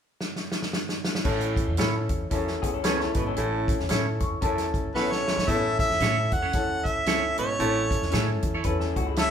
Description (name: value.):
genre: uptempo 1960s-style soul.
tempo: 114 BPM.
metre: 4/4.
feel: swing 59% on 8ths.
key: A major.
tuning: A4 = 440 Hz.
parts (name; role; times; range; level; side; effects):
natural country drum kit; drums; 0.2-9.3 s; crash cymbal, hi-hat, kick drum, snare drum; -28 LUFS; equal; none.
clear concert grand piano; accompaniment; 1.2-9.3 s; B3 to C#6; -29 LUFS; left 3 dB; none.
raspy baritone saxophone; riff; 1.2-7.8 s; E2 to B2; -33 LUFS; right 6 dB; none.
upright bass; bass; 1.3-9.3 s; G#1 to A2; -31 LUFS; right 1 dB; none.
clean electric guitar; stabs; 1.8-9.3 s; C#4 to C#5; -31 LUFS; right 4 dB; phaser.
electric guitar through a small old amp; riff; 2.6-4.0, 8.6-9.3 s; G#3 to C#5; -32 LUFS; left 5 dB; none.
warm harmonica; melody; 5.0-9.3 s; B4 to F#5; -26 LUFS; right 1 dB; none.
room: moderate large studio reverb, RT60 0.9 s.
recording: band playing live in one room.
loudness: -23 LUFS.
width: side -8 dB against mid.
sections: 0.0-1.3 A section; 1.3-5.5 B section; 5.5-9.3 C section.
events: drum fill 0.2-1.3, 5.0-5.5; grand piano fill 3.9-5.5.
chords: 0.0 N.C.; 1.3 A.